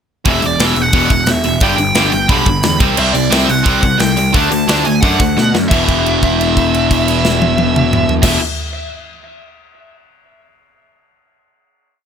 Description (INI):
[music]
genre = punk rock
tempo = 176 BPM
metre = 4/4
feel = straight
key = unclear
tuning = A4 = 440 Hz
[part]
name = overdriven electric guitar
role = riff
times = 0.2-8.4 s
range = E2 to D4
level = -18 LUFS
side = right 13 dB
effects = none
[part]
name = high-gain lead guitar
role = melody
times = 0.3-8.4 s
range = D5 to B5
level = -17 LUFS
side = right 2 dB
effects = distortion, tape echo
[part]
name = crunchy overdriven guitar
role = riff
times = 0.3-8.4 s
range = E2 to D4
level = -18 LUFS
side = left 15 dB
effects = none
[part]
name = fuzz picked electric bass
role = bass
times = 0.3-8.4 s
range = E1 to B2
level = -18 LUFS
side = equal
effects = overdrive
[part]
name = tight metal drum kit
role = drums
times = 0.3-8.3 s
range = crash cymbal, hi-hat, kick drum, snare drum, toms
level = -16 LUFS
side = equal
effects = none
[sound]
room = little or no reverb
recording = none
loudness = -11 LUFS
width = side -7 dB against mid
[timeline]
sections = 0.3-5.7 verse; 5.7-8.4 final chord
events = drum fill 5.4-5.7; held note 5.7-8.2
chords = 0.3 E5; 1.6 G; 2.8 C5; 4.3 D; 5.7 E5